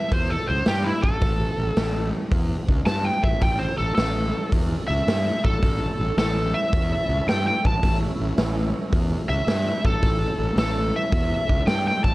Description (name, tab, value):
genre	blues rock power trio and southern rock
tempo	109 BPM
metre	4/4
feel	swing 67% on 8ths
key	A mixolydian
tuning	A4 = 440 Hz
part	overdriven slide guitar	melody	0.0-12.1 s	E4 to A5	-25 LUFS	equal	slapback echo, plate reverb
part	fuzz fingered electric bass	bass	0.1-12.1 s	A1 to G2	-26 LUFS	equal	overdrive
part	raw garage drum kit	drums	0.1-12.1 s	hi-hat, kick drum, snare drum	-23 LUFS	equal	none
part	overdriven tonewheel organ	sustained chords	3.4-12.1 s	A3 to Bb4	-35 LUFS	right 2 dB	slow rotary speaker, chorus vibrato, plate reverb
room	light reverb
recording	none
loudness	-20 LUFS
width	side -19 dB against mid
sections	0.0-12.1 A section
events	electric slide guitar solo 0.0-12.1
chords	0.0 A